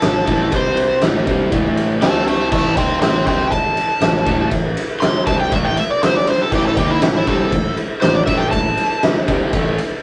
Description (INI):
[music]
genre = blues rock power trio and southern rock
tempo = 120 BPM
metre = 4/4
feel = straight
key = A minor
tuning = A4 = 437 Hz
[part]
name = overdriven slide guitar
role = melody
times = 0.0-9.0 s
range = E4 to C6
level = -21 LUFS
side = equal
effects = none
[part]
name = overdriven tonewheel organ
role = sustained chords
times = 0.0-10.0 s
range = C4 to C5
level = -33 LUFS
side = equal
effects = none
[part]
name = crunchy overdriven guitar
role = riff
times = 0.0-9.8 s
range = A2 to D#4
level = -23 LUFS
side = equal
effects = none
[part]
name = fuzz picked electric bass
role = bass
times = 0.0-9.8 s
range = A1 to D#2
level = -28 LUFS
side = equal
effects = overdrive
[part]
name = oversized low-tuned drum kit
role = drums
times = 0.0-9.9 s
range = crash cymbal, kick drum, ride cymbal, snare drum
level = -20 LUFS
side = equal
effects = none
[sound]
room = moderate booth ambience, RT60 0.2 s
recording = rough rehearsal-room recording, nothing above 10.3 kHz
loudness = -17 LUFS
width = mono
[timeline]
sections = 0.0-10.0 A section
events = electric slide guitar solo 0.0-10.0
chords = 0.0 Am; 0.5 C5; 1.0 Am; 2.0 C5; 2.5 Am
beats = 0.03 | 0.53 1.03 1.52 2.02 | 2.52 3.02 3.52 4.03 | 4.53 5.03 5.53 6.03 | 6.53 7.03 7.53 8.03 | 8.53 9.04 9.54